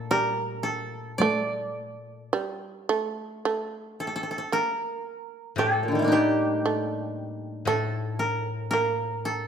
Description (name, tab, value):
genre	japanese traditional, Japanese chamber music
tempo	53-59 BPM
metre	4/4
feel	rubato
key	unclear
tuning	A4 = 437 Hz
part	koto	melody	0.0-9.5 s	Bb2 to D5	-26 LUFS	equal	none
part	shamisen	second line	0.0-9.5 s	G3 to Bb3	-29 LUFS	right 5 dB	none
part	koto	accompaniment	0.0-9.5 s	A2 to Bb2	-34 LUFS	left 4 dB	none
part	solo taiko drums	percussion	1.2-1.5 s	none	-30 LUFS	left 1 dB	none
room	moderate recital hall reverb, RT60 1.6 s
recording	none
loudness	-25 LUFS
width	side -7 dB against mid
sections	0.0-3.4 A section; 3.4-9.5 B section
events	none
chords	none